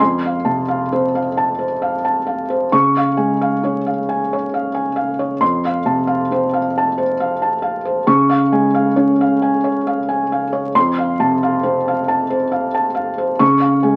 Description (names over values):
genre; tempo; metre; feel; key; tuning
neoclassical minimalist piano; 45 BPM (dotted quarters); 6/8; rubato; unclear; A4 = 440 Hz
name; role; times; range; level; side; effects
felt-muted upright piano; solo; 0.0-14.0 s; F2 to Db6; -17 LUFS; equal; none
room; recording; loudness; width
moderate studio reverb, RT60 0.6 s; very old 78 rpm record, vinyl crackle; -17 LUFS; mono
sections
0.0-14.0 A section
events
none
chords
0.0 F; 2.7 Db; 5.4 F; 8.1 Db; 10.8 F; 13.4 Db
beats
1.36 | 2.73 4.07 | 5.41 6.75 | 8.08 9.41 | 10.75 12.07 | 13.40